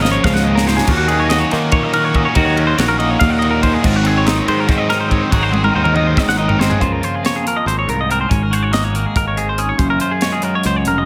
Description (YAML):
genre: math rock and midwest emo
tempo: 283 BPM (eighths)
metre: 7/8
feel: straight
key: Db major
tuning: A4 = 440 Hz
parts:
  - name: twangy electric guitar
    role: accompaniment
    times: 0.0-11.1 s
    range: Gb2 to Gb4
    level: -22 LUFS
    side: equal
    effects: phaser
  - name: clean electric guitar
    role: arpeggios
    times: 0.0-11.1 s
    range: F4 to Gb5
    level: -21 LUFS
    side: equal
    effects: spring reverb, digital delay
  - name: cranked stack guitar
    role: riff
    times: 0.0-6.8 s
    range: Ab2 to Eb4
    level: -24 LUFS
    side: equal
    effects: overdrive
  - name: modern bright picked electric bass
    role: bass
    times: 0.0-11.1 s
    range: F1 to Eb3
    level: -22 LUFS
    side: equal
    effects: none
  - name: crisp fusion drum kit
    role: drums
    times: 0.0-11.0 s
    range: crash cymbal, hi-hat, kick drum, ride cymbal, snare drum, splash cymbal, toms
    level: -22 LUFS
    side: equal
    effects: none
room: light reverb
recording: none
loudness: -16 LUFS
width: mono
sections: 0.0-6.8 A section; 6.8-11.1 B section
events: drum fill 0.0-0.9, 5.5-6.8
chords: 0.0 Db69; 0.9 Ebm7; 3.8 Ab7; 6.8 Dbmaj13; 8.3 Ab9sus4; 9.8 Gbmaj9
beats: 0.03 0.24 0.45 0.67 | 0.88 1.09 1.30 1.51 1.73 1.94 2.15 | 2.36 2.57 2.79 3.00 3.21 3.42 3.63 | 3.85 4.06 4.27 4.48 4.69 4.91 5.12 | 5.33 5.54 5.75 5.96 6.18 6.39 6.60 | 6.81 7.03 7.24 7.45 7.67 7.88 8.09 | 8.30 8.52 8.73 8.94 9.15 9.37 9.58 | 9.79 10.01 10.22 10.43 10.65 10.86